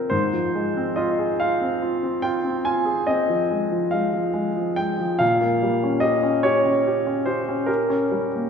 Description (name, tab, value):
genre	classical, romantic nocturne for solo piano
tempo	47 BPM (dotted quarters)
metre	12/8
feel	rubato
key	F minor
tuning	A4 = 440 Hz
part	clear baby grand piano	solo	0.0-8.5 s	Ab2 to Ab5	-20 LUFS	equal	none
room	wet scoring stage reverb, RT60 1.6 s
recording	heard from further back in the room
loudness	-20 LUFS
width	side -6 dB against mid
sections	0.1-8.5 A section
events	none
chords	0.1 Fm/Ab; 5.2 Gdim/Bb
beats	| 0.12 1.42 2.66 3.94 | 5.21 6.45 7.68